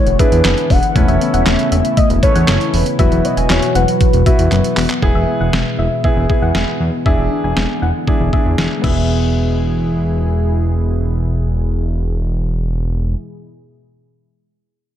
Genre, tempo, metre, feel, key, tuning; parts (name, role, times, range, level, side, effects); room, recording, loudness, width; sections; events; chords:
synth-pop; 118 BPM; 4/4; straight; E major; A4 = 440 Hz
warm velvety synth lead; melody; 0.0-4.8 s; B4 to F#5; -20 LUFS; right 1 dB; chorus, ping-pong delay
chorused pulse-width pad; sustained chords; 0.0-13.2 s; B2 to G#4; -22 LUFS; left 2 dB; low-pass filter
soft round pluck; arpeggios; 0.0-13.2 s; F#3 to A4; -23 LUFS; left 7 dB; chorus, low-pass filter, ping-pong delay
fat analog bass; bass; 0.1-13.2 s; E1 to E2; -16 LUFS; equal
detuned 8-bit digital drum machine; drums; 0.1-9.0 s; crash cymbal, handclaps, hi-hat, kick drum, snare drum; -16 LUFS; equal
soft round pluck; second line; 0.2-10.6 s; E5 to G#5; -24 LUFS; left 1 dB; chorus, ping-pong delay
clear concert grand piano; accompaniment; 0.2-13.2 s; B3 to B4; -23 LUFS; right 1 dB; low-pass filter
light reverb, digital ambience; dark, warm production; -13 LUFS; side -10 dB against mid
0.0-5.0 A section; 5.0-9.1 B section; 9.1-13.2 C section
drum fill 4.5-5.0; filter sweep 5.0-9.1
0.0 E7; 1.0 Aadd9/E; 3.0 Bsus4/E; 5.0 E; 7.1 E7; 8.8 E